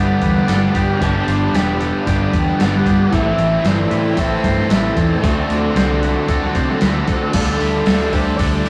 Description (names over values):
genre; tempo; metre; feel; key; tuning
rock, shoegaze and dream pop; 114 BPM; 4/4; straight; D mixolydian; A4 = 440 Hz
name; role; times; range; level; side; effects
breathy flute-like synth lead; melody; 0.0-8.7 s; A4 to A5; -27 LUFS; equal; chorus, phaser
lush unison pad; sustained chords; 0.0-8.7 s; G4 to D6; -30 LUFS; equal; chorus, phaser
twangy electric guitar; arpeggios; 0.0-8.7 s; G4 to D5; -32 LUFS; equal; none
crunchy overdriven guitar; riff; 0.0-8.7 s; G2 to F#4; -26 LUFS; equal; spring reverb
overdriven electric guitar; riff; 0.0-8.7 s; G2 to A4; -24 LUFS; equal; none
thick fuzz guitar; riff; 0.0-8.7 s; G2 to D4; -25 LUFS; equal; none
vintage muted fingered electric bass; bass; 0.0-8.7 s; E1 to D3; -24 LUFS; equal; none
gated 80s digital drum machine; drums; 0.2-8.7 s; crash cymbal, hi-hat, kick drum, snare drum; -22 LUFS; equal; gated reverb, gated reverb snare
room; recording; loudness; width
moderate stone room reverb, RT60 1.0 s; rough rehearsal-room recording, warm saturation; -16 LUFS; mono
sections
0.0-7.3 A section; 7.3-8.7 B section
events
none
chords
0.0 Gmaj7; 3.1 Am7; 5.2 D7; 7.3 Dsus4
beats
0.48 | 1.01 1.53 2.06 2.59 | 3.12 3.65 4.17 4.70 | 5.23 5.75 6.28 6.81 | 7.34 7.87 8.39